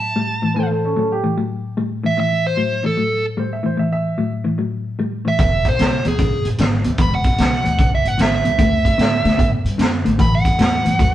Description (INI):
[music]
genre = electric blues shuffle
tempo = 150 BPM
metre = 4/4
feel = swing 65% on 8ths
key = unclear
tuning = A4 = 441 Hz
[part]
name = dark smooth lead guitar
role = melody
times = 0.0-11.1 s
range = G#4 to B5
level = -20 LUFS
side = right 2 dB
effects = overdrive
[part]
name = semi-hollow electric guitar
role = riff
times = 0.0-11.1 s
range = E2 to C4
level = -20 LUFS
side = left 2 dB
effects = none
[part]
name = warm upright piano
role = second line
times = 0.5-4.3 s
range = C#4 to E5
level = -23 LUFS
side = right 2 dB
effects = none
[part]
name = upright bass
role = bass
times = 5.4-11.1 s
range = E1 to C3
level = -22 LUFS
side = equal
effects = none
[part]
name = raw garage drum kit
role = drums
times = 5.4-11.1 s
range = hi-hat, kick drum, snare drum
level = -18 LUFS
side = equal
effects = vintage 12-bit sampler grit
[sound]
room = moderate stone room reverb, RT60 1.2 s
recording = band playing live in one room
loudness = -15 LUFS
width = side -12 dB against mid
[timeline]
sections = 0.0-11.1 A section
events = none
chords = 0.0 A7(no3); 5.4 E7; 8.6 D7; 10.2 A7(no3)